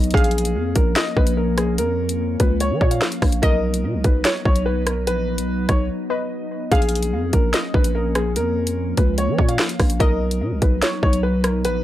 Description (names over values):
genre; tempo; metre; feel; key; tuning
hip hop, drill; 146 BPM; 4/4; half-time; Bb phrygian; A4 = 440 Hz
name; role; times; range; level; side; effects
dark baby grand piano; melody; 0.0-11.8 s; Ab4 to F5; -25 LUFS; equal; none
warbly dusty pluck; second line; 0.0-11.2 s; B4 to F5; -28 LUFS; left 1 dB; chorus, phaser, analog delay
glassy FM pad; sustained chords; 0.0-11.8 s; F3 to D#4; -27 LUFS; left 2 dB; ensemble chorus, built-in reverb
growling 808-style bass; bass; 0.0-11.8 s; Bb1 to F3; -22 LUFS; equal; none
drill drum kit; drums; 0.0-11.7 s; hi-hat, kick drum, rim click, snare drum; -19 LUFS; equal; none
room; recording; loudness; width
little or no reverb; dry, gritty hardware recording; -17 LUFS; side -13 dB against mid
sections
0.0-6.7 A section; 6.7-11.8 A section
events
break 5.9-6.7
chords
0.1 Bbm; 3.4 B; 6.7 Bbm; 10.0 B